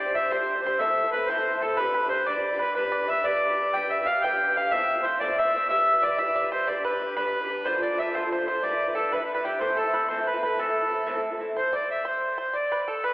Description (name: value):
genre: celtic folk, Celtic slide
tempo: 122 BPM (dotted quarters)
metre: 12/8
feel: straight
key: A minor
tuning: A4 = 439 Hz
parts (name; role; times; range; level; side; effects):
- accordion; melody; 0.0-13.1 s; G4 to G5; -24 LUFS; equal; none
- bluegrass banjo; second line; 0.0-13.1 s; G4 to G5; -33 LUFS; right 2 dB; none
- fingerpicked steel-string acoustic guitar; accompaniment; 0.0-11.6 s; A2 to C5; -31 LUFS; equal; none
room: wet church reverb, RT60 3.0 s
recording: recorded in a church or concert hall, telephone sound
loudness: -23 LUFS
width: side -18 dB against mid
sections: 0.0-11.6 A section; 11.6-13.1 A section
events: none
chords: 0.0 Gsus4; 0.8 Am; 1.8 G; 4.7 Am; 5.7 Em; 6.7 G; 7.7 Dm; 8.6 G6; 9.6 Am; 11.6 N.C.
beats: 0.31 0.80 1.29 | 1.78 2.27 2.76 3.25 | 3.74 4.23 4.72 5.21 | 5.70 6.19 6.68 7.17 | 7.66 8.15 8.64 9.13 | 9.62 10.11 10.59 11.08 | 11.57 12.06 12.54 13.03